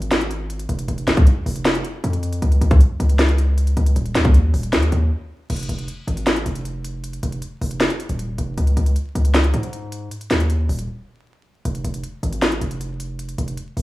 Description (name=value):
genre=hip hop, trap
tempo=156 BPM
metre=4/4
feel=half-time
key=F minor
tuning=A4 = 441 Hz
part: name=hard-hitting 808-style bass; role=bass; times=0.0-13.8 s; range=Eb1 to Ab2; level=-20 LUFS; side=equal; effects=none
part: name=trap drum kit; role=drums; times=0.0-13.8 s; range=crash cymbal, handclaps, hi-hat, kick drum, snare drum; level=-18 LUFS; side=equal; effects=none
room=digital ambience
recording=vinyl crackle, small room reverb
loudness=-17 LUFS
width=side -18 dB against mid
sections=0.0-5.5 A section; 5.5-13.8 B section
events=break 5.1-5.5, 10.9-11.7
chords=none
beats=0.11 0.50 | 0.88 1.27 1.65 2.04 | 2.42 2.81 3.19 3.58 | 3.96 4.34 4.73 5.11 | 5.50 5.88 6.27 6.65 | 7.04 7.42 7.81 8.19 | 8.58 8.96 9.35 9.73 | 10.11 10.50 10.88 11.27 | 11.65 12.04 12.42 12.81 | 13.19 13.58